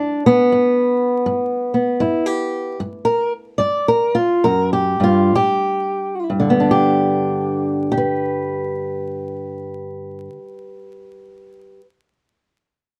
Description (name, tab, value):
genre	acoustic country blues, solo or duo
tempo	60-84 BPM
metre	4/4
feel	swing 62% on 8ths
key	G major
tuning	A4 = 438 Hz
part	fingerpicked old ladder-braced acoustic guitar	solo	0.0-11.8 s	F#2 to D5	-18 LUFS	equal	none
room	moderate small room reverb, RT60 0.5 s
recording	vinyl crackle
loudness	-18 LUFS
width	mono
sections	0.0-6.3 A section; 6.3-10.3 B section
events	slowing down 0.0-6.3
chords	0.0 G; 2.8 Bb5; 5.3 N.C.; 6.3 G